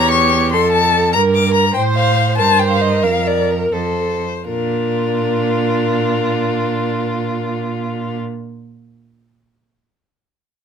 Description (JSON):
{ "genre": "quick classical-period movement for string quartet", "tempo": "79-99 BPM (dotted quarters)", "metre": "6/8", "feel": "straight", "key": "Bb major", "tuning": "A4 = 440 Hz", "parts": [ { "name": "warm violin", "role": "melody", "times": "0.0-8.2 s", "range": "Bb4 to D6", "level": "-18 LUFS", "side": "left 7 dB", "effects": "none" }, { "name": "rich violin", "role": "second line", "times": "0.0-8.2 s", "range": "F4 to C5", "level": "-21 LUFS", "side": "left 1 dB", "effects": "none" }, { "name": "rich viola", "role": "accompaniment", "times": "0.0-8.2 s", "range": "D4 to C#5", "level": "-23 LUFS", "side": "right 6 dB", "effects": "none" }, { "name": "rich cello", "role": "bass", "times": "0.0-8.2 s", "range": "E2 to Bb2", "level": "-20 LUFS", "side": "right 5 dB", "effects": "none" } ], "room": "light reverb", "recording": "none", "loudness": "-14 LUFS", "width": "side -7 dB against mid", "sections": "0.0-4.5 A section; 4.5-7.4 B section", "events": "slowing down 1.1-4.5", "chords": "0.0 Em6; 0.5 F; 1.1 Gm; 1.7 F/A; 2.4 Gm; 3.0 Bb5/F; 3.7 F; 4.5 Bb", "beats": "| 0.52 1.13 | 1.75 2.38 | 3.03 3.73 | 4.46 5.20 | 5.94 6.68" }